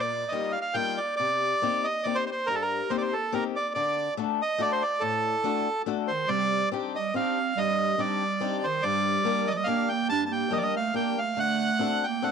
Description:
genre	musette waltz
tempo	141 BPM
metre	3/4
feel	swing 53% on 8ths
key	unclear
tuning	A4 = 440 Hz
part	bandoneon	melody	0.0-12.3 s	A4 to A5	-26 LUFS	right 2 dB	none
part	picked swing-style acoustic guitar	accompaniment	0.0-12.3 s	G2 to Bb4	-31 LUFS	left 12 dB	none
part	mellow clarinet	second line	6.1-12.3 s	Eb3 to D4	-30 LUFS	right 11 dB	none
room	moderate plate reverb, RT60 2.6 s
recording	1960s-style stereo with parts hard left and right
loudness	-24 LUFS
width	side -6 dB against mid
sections	0.0-12.3 A section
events	none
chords	0.0 Ebadd9; 1.2 Cm7; 3.8 D; 6.3 Cmadd9; 8.8 Gm; 11.4 D7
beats	0.33 0.77 | 1.20 1.63 2.06 | 2.49 2.91 3.34 | 3.76 4.18 4.60 | 5.02 5.44 5.87 | 6.30 6.73 7.16 | 7.58 8.00 8.42 | 8.84 9.26 9.68 | 10.10 10.52 10.95 | 11.38 11.81 12.24

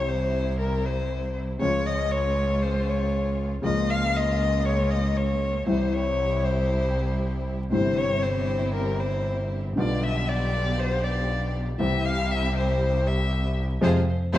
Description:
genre	tango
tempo	118 BPM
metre	4/4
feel	rubato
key	unclear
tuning	A4 = 440 Hz
part	warm violin	second line	0.0-14.4 s	Bb4 to F5	-28 LUFS	left 2 dB	tape echo
part	warm baby grand piano	accompaniment	0.0-14.4 s	G1 to G4	-30 LUFS	left 1 dB	none
part	rich studio string section	stabs	0.0-14.4 s	G3 to Ab4	-34 LUFS	right 1 dB	none
part	clear double bass	bass	0.0-14.4 s	G1 to F2	-26 LUFS	equal	none
room	moderate large studio reverb, RT60 1.2 s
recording	dark, warm production, vinyl crackle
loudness	-22 LUFS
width	side -13 dB against mid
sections	0.0-14.4 A section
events	violin solo 0.0-14.4; band accent 13.8-14.4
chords	0.0 C; 1.6 Db; 3.6 Bbm/Db; 5.7 C; 9.8 G7/B; 11.8 C; 13.8 Fm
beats	0.09 0.60 1.11 | 1.62 2.12 2.63 3.13 | 3.64 4.14 4.65 5.16 | 5.67 6.18 6.69 7.21 | 7.73 8.24 8.76 9.27 | 9.77 10.28 10.78 11.29 | 11.79 12.29 12.80 13.31 | 13.82 14.33

